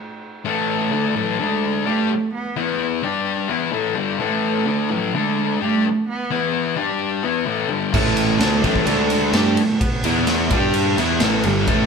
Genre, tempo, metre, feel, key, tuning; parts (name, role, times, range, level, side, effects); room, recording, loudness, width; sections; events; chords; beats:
quiet-loud alternative rock; 128 BPM; 4/4; straight; A4 = 439 Hz
thick fuzz guitar; riff; 0.4-11.9 s; G2 to G4; -20 LUFS; left 7 dB; distortion
dark cello; melody; 0.5-11.9 s; F#3 to B3; -23 LUFS; right 4 dB
overdriven semi-hollow guitar; riff; 7.9-11.9 s; G2 to G4; -22 LUFS; right 10 dB
fuzz picked electric bass; bass; 7.9-11.9 s; G1 to G2; -23 LUFS; left 1 dB; overdrive
raw garage drum kit; drums; 7.9-11.8 s; crash cymbal, kick drum, ride cymbal, snare drum; -23 LUFS; equal
moderate stone room reverb, RT60 1.4 s; band playing live in one room; -17 LUFS; side -5 dB against mid
0.5-11.9 A section
stop 0.0-0.5
0.5 A5; 1.4 D5; 1.9 Gadd9; 2.6 E5; 3.0 G5; 3.5 A5; 5.1 D5; 5.6 Gadd9; 6.3 E5; 6.8 G5; 7.2 A5; 8.9 D5; 9.3 Gadd9; 10.0 E5; 10.5 G5; 11.0 A5
| 0.45 0.92 1.39 1.86 | 2.33 2.80 3.26 3.73 | 4.20 4.67 5.14 5.61 | 6.07 6.54 7.01 7.48 | 7.94 8.41 8.88 9.35 | 9.81 10.28 10.75 11.22 | 11.69